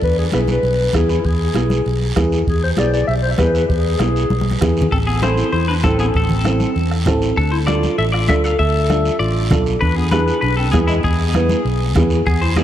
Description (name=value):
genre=latin, cumbia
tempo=196 BPM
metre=4/4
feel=straight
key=A harmonic minor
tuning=A4 = 440 Hz
part: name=dark clarinet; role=second line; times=0.0-12.6 s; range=G#3 to E5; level=-22 LUFS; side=left 2 dB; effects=ping-pong delay
part: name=fingered electric bass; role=bass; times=0.0-12.6 s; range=A1 to E2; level=-19 LUFS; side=equal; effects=none
part: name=bombo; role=percussion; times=0.0-12.6 s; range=none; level=-21 LUFS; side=right 1 dB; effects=none
part: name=guiro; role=percussion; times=0.0-12.6 s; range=none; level=-31 LUFS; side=right 4 dB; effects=none
part: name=dark upright piano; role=accompaniment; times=0.3-12.6 s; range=B3 to B4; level=-21 LUFS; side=right 1 dB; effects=none
part: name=congas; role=percussion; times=0.3-12.6 s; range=none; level=-24 LUFS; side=left 2 dB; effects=none
part: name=clean electric guitar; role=melody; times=4.9-12.6 s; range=E4 to F5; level=-22 LUFS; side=left 3 dB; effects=spring reverb, ping-pong delay
room=moderate plate reverb, RT60 3.6 s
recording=dreamy mix soaked in reverb, faint mains hum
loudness=-14 LUFS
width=side -11 dB against mid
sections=0.0-4.9 A section; 4.9-12.6 B section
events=clarinet solo 0.0-4.9; drum fill 4.3-4.9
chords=0.0 E; 4.9 Am; 7.4 Dm; 9.8 E7